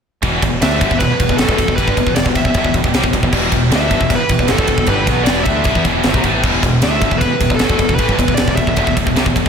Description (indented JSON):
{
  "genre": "heavy metal",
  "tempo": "155 BPM",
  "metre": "4/4",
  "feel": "straight",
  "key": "E minor",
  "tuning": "A4 = 437 Hz",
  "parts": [
    { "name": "lush unison pad", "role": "sustained chords", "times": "0.2-9.5 s", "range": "E3 to G4", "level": "-28 LUFS", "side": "equal", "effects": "none" },
    { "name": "scooped high-gain guitar", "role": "riff", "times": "0.2-9.5 s", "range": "E2 to D4", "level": "-20 LUFS", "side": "right 9 dB", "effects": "distortion, slapback echo" },
    { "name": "tight distorted guitar", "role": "riff", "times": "0.2-9.5 s", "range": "E2 to D4", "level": "-20 LUFS", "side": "left 10 dB", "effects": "distortion, slapback echo" },
    { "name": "growling fingered electric bass", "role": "bass", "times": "0.2-9.5 s", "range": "E1 to E2", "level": "-21 LUFS", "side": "equal", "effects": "overdrive" },
    { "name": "tight metal drum kit", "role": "drums", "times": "0.2-9.5 s", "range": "crash cymbal, kick drum, ride cymbal, snare drum", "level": "-17 LUFS", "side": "equal", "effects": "none" },
    { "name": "high-gain lead guitar", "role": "melody", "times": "0.6-8.9 s", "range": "A4 to E5", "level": "-20 LUFS", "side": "equal", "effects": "distortion, digital delay" }
  ],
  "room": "moderate recital hall reverb, RT60 1.7 s, small room ambience",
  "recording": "big arena sound",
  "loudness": "-12 LUFS",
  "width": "side -6 dB against mid",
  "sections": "0.2-9.5 A section",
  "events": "none",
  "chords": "0.2 Em",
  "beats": "| 0.23 0.62 1.00 1.39 | 1.78 2.17 2.55 2.94 | 3.33 3.72 4.11 4.50 | 4.88 5.27 5.66 6.05 | 6.44 6.83 7.21 7.60 | 7.99 8.38 8.77 9.15"
}